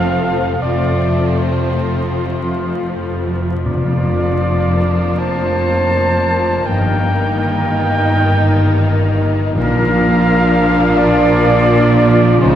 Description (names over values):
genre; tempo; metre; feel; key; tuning
cinematic; 74-88 BPM; 4/4; rubato; Bb major; A4 = 444 Hz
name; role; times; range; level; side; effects
warm symphonic violin section; melody; 0.0-12.6 s; C4 to Eb4; -26 LUFS; left 3 dB; none
mellow concert flute; second line; 0.0-12.6 s; Eb4 to C5; -23 LUFS; equal; none
mellow cor anglais; second line; 0.0-12.6 s; C5 to A5; -20 LUFS; right 1 dB; none
warm symphonic violin section; second line; 0.0-12.6 s; Ab3 to Bb3; -27 LUFS; left 2 dB; none
rich symphonic viola section; accompaniment; 0.0-12.6 s; Eb3 to F3; -22 LUFS; right 1 dB; none
dark French horn section; sustained chords; 0.0-12.6 s; Ab3 to F4; -22 LUFS; left 1 dB; none
concert harp; arpeggios; 0.0-12.6 s; F2 to Eb6; -23 LUFS; left 2 dB; none
rich studio double bass section; bass; 0.0-12.6 s; F1 to Db2; -20 LUFS; right 1 dB; none
rich symphonic cello section; bass; 0.0-12.6 s; F2 to Db3; -19 LUFS; right 1 dB; none
timpani; percussion; 3.7-4.8, 9.6-10.6 s; F2 to Bb2; -22 LUFS; left 1 dB; none
room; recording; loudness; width
wet scoring stage reverb, RT60 1.6 s; heard from further back in the room, vinyl crackle; -12 LUFS; side -10 dB against mid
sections
0.0-12.6 A section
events
none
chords
0.0 F; 3.7 Bb/F; 6.7 Eb/G; 9.6 Bb